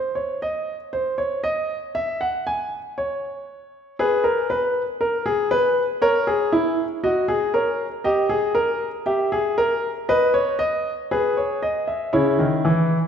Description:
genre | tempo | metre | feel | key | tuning
classical, baroque-style 3-part fugue for grand piano | 59 BPM | 4/4 | straight | unclear | A4 = 440 Hz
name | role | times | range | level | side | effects
warm grand piano | solo | 0.0-13.1 s | C#3 to G#5 | -20 LUFS | equal | none
room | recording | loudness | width
wet scoring stage reverb, RT60 1.7 s | recorded in a church or concert hall | -20 LUFS | side -8 dB against mid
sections
0.0-13.1 A section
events
none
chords
0.0 N.C.; 4.0 G#m; 6.0 A#m7b5; 8.0 D#/G; 10.1 G#m/B; 12.1 C#m

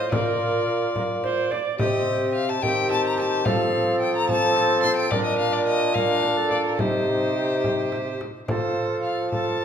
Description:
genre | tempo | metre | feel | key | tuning
classical, renaissance-style consort dance | 72 BPM (dotted quarters) | 6/8 | straight | unclear | A4 = 440 Hz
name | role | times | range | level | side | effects
clear violin | melody | 0.0-9.6 s | Bb4 to C6 | -27 LUFS | left 5 dB | none
bright alto recorder | second line | 0.0-9.6 s | G4 to D5 | -26 LUFS | right 3 dB | none
brilliant trombone | accompaniment | 0.0-9.6 s | C4 to F4 | -29 LUFS | left 2 dB | none
mellow bassoon | bass | 0.0-9.6 s | A2 to F3 | -26 LUFS | right 1 dB | none
frame drum | percussion | 0.1-9.6 s | none | -30 LUFS | left 1 dB | none
room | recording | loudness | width
wet recital hall reverb, RT60 1.4 s | recorded in a church or concert hall | -20 LUFS | side -8 dB against mid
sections
0.0-8.5 A section; 8.5-9.6 B section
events
none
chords
0.1 Bb; 1.8 Cm; 3.5 F; 5.1 Bb; 6.8 Cm; 8.5 F

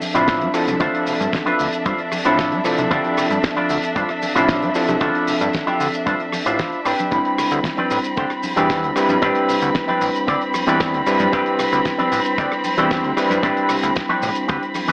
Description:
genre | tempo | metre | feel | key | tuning
nu-disco, nu disco | 114 BPM | 4/4 | straight | A minor | A4 = 440 Hz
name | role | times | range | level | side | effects
overdriven reed electric piano | accompaniment | 0.0-14.9 s | F3 to B5 | -20 LUFS | equal | sidechain pumping, analog delay
rich studio violin section | sustained chords | 0.0-14.9 s | C4 to B5 | -24 LUFS | equal | vintage 12-bit sampler grit, sidechain pumping
electric guitar with an envelope filter | riff | 0.0-14.9 s | C4 to D5 | -22 LUFS | equal | analog chorus
damped 70s drum kit | drums | 0.0-14.9 s | hi-hat, rim click, shaker, snare drum | -27 LUFS | equal | studio reverb
congas and cabasa | percussion | 0.0-14.9 s | none | -32 LUFS | equal | none
fat analog bass | bass | 0.1-14.9 s | A1 to G2 | -24 LUFS | equal | none
kick drum | drums | 0.3-14.6 s | none | -25 LUFS | equal | studio reverb
room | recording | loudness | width
light reverb, studio ambience | AM radio sound | -16 LUFS | side -35 dB against mid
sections
0.0-14.9 A section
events
none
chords
0.0 Dm9; 6.9 Am11

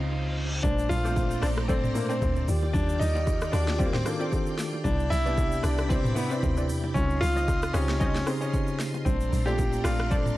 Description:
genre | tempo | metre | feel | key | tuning
amapiano | 114 BPM | 4/4 | swing 55% on 16ths | Bb major | A4 = 440 Hz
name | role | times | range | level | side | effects
warm concert grand piano | melody | 0.0-10.4 s | Bb3 to F5 | -30 LUFS | left 1 dB | tape echo
tine electric piano | accompaniment | 0.0-10.4 s | Bb2 to Eb5 | -31 LUFS | equal | medium stereo tremolo
string machine, violins | sustained chords | 0.0-10.4 s | Db3 to D6 | -38 LUFS | equal | ensemble chorus
fingered electric bass | bass | 0.0-0.6 s | Db2 | -31 LUFS | equal | transformer saturation
reverse cymbal | sound effects | 0.0-0.6 s | none | -35 LUFS | equal | none
deep log drum bass | bass | 0.6-10.4 s | Bb1 to E2 | -28 LUFS | equal | transformer saturation
afro-pop drum kit | drums | 0.6-10.4 s | hi-hat, kick drum, rim click, shaker, snare drum, toms | -30 LUFS | equal | none
congas and bongos | percussion | 0.6-10.2 s | none | -37 LUFS | left 1 dB | none
analog pluck | stabs | 1.0-10.2 s | E4 to Eb5 | -38 LUFS | equal | chorus, tape echo
room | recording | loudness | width
little or no reverb | dry, gritty hardware recording | -24 LUFS | side -16 dB against mid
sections
0.6-10.4 A section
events
break 0.0-0.6; reverse cymbal 0.0-0.6; drop 0.6-10.4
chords
0.0 Dbmaj9; 0.6 Bbmaj9; 2.5 Ebmaj9; 4.8 Cmaj9; 7.0 Dbmaj9; 9.1 Bbmaj9

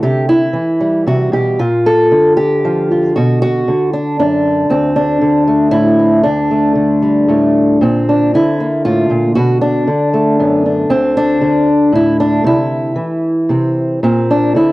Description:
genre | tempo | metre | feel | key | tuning
folk, solo fingerstyle acoustic guitar | 116 BPM | 3/4 | rubato | D mixolydian | A4 = 440 Hz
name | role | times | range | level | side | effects
fingerpicked old ladder-braced acoustic guitar | solo | 0.0-14.7 s | D2 to A4 | -10 LUFS | equal | cassette tape
room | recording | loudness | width
light reverb | home recording on cassette | -10 LUFS | side -18 dB against mid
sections
0.0-7.8 A section; 7.8-14.7 A section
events
none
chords
0.0 Cadd9; 1.6 Bb; 3.2 Bm; 4.7 D5; 6.2 Dsus4; 7.8 Bb; 9.4 Bm7; 10.9 D5; 12.4 Cadd9; 14.0 Bb

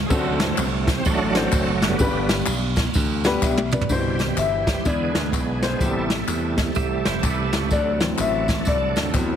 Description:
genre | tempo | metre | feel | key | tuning
uptempo gospel | 126 BPM | 4/4 | swing 63% on 8ths | unclear | A4 = 440 Hz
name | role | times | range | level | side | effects
slap bass | bass | 0.0-9.4 s | F1 to E2 | -26 LUFS | equal | none
warm grand piano | accompaniment | 0.1-9.4 s | G2 to E5 | -24 LUFS | left 4 dB | none
bright tonewheel organ | sustained chords | 0.1-9.4 s | C3 to C5 | -26 LUFS | right 4 dB | slow rotary speaker, chorus vibrato
jazz brush drum kit | drums | 0.1-9.3 s | crash cymbal, hi-hat, kick drum, ride cymbal, snare drum, toms | -23 LUFS | equal | none
tambourine and handclaps | percussion | 0.1-9.3 s | none | -33 LUFS | left 4 dB | none
semi-hollow electric guitar | second line | 6.8-7.7 s | B3 to E5 | -29 LUFS | right 10 dB | lush chorus
room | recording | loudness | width
light reverb | heavily compressed radio sound | -19 LUFS | side -9 dB against mid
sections
0.0-3.9 A section; 3.9-9.4 B section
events
tonewheel organ solo 0.0-3.9; drum fill 3.4-3.9; grand piano solo 3.9-9.4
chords
0.1 D7; 2.0 G; 3.9 Cmaj7; 4.9 E7; 5.8 Am7; 7.7 D7

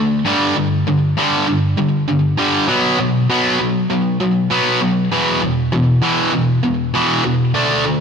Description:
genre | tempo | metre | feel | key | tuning
rock | 99 BPM | 4/4 | straight | E minor | A4 = 440 Hz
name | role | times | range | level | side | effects
distorted electric guitar | solo | 0.0-8.0 s | E2 to D4 | -14 LUFS | equal | overdrive, slapback echo
room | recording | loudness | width
moderate huge ambient reverb, RT60 5.0 s | none | -14 LUFS | side -6 dB against mid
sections
0.0-5.1 A section; 5.1-8.0 B section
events
build-up 0.0-5.1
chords
0.3 G5; 2.7 B5; 5.1 E5

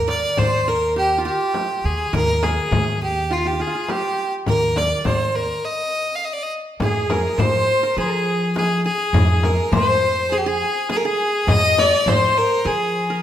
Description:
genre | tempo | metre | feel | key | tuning
Turkish makam ensemble | 102 BPM | 4/4 | straight | Eb makam rast | A4 = 441 Hz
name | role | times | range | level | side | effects
clear fiddle | melody | 0.0-13.2 s | F4 to F5 | -20 LUFS | equal | none
qanun | second line | 0.0-13.2 s | F4 to Eb5 | -26 LUFS | right 1 dB | none
upright bass | bass | 0.0-13.2 s | Eb2 to F3 | -24 LUFS | equal | none
darbuka | percussion | 0.1-12.9 s | none | -25 LUFS | left 1 dB | none
frame drum | percussion | 0.4-12.2 s | none | -26 LUFS | left 2 dB | none
warm studio violin section | second line | 6.8-13.2 s | Ab4 to Eb5 | -26 LUFS | left 3 dB | none
room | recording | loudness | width
moderate recital hall reverb, RT60 1.4 s | minimal, uncompressed stereo recording | -17 LUFS | side -11 dB against mid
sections
0.0-6.8 A section; 6.8-13.2 B section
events
stop 5.6-6.8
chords
none

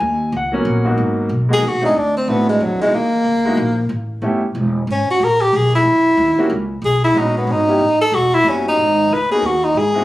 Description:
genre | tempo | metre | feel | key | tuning
jazz, small-group swing and bop | 185 BPM | 3/4 | swing 61% on 8ths | G# minor | A4 = 437 Hz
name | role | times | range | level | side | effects
warm grand piano | accompaniment | 0.0-10.0 s | G#2 to G#5 | -20 LUFS | equal | none
upright bass | bass | 0.0-10.0 s | E1 to A2 | -21 LUFS | equal | none
warm tenor saxophone | melody | 1.5-10.0 s | F#3 to B4 | -14 LUFS | equal | plate reverb
room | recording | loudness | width
moderate club reverb, RT60 0.7 s | recorded on a phone in the room, studio ambience | -14 LUFS | side -16 dB against mid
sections
1.0-8.8 A section; 8.8-10.0 A section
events
tenor saxophone solo 1.0-10.0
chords
0.0 G#m11; 1.0 G#m9; 2.0 D9; 2.9 C#m; 3.9 A9; 4.9 G#madd9; 5.8 F#7(no3); 6.8 B6; 7.8 A13; 8.8 G#7sus4

